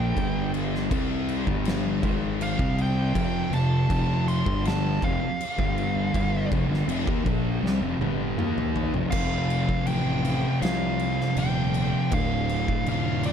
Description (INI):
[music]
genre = stoner and doom metal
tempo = 80 BPM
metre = 4/4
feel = straight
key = unclear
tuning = A4 = 440 Hz
[part]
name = fuzz lead guitar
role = melody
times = 0.0-13.3 s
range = D5 to C6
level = -32 LUFS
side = right 3 dB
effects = distortion, digital delay
[part]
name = thick fuzz guitar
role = riff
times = 0.0-13.3 s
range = D2 to Eb4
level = -28 LUFS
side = left 10 dB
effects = distortion
[part]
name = thick fuzz guitar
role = riff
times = 0.0-13.3 s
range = D2 to Eb4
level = -28 LUFS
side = right 8 dB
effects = distortion
[part]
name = fuzz fingered electric bass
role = bass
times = 0.0-13.3 s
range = D1 to Eb2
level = -30 LUFS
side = equal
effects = overdrive, tube saturation
[part]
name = oversized low-tuned drum kit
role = drums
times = 0.2-13.3 s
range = crash cymbal, kick drum, snare drum, toms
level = -30 LUFS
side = equal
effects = none
[sound]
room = studio reverb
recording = dark, warm production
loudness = -23 LUFS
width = side -8 dB against mid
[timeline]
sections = 0.0-9.1 A section; 9.1-13.3 B section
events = lead electric guitar solo 0.0-9.1; drum fill 7.6-9.1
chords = 0.0 G5; 3.2 F5; 9.1 F; 12.1 Dm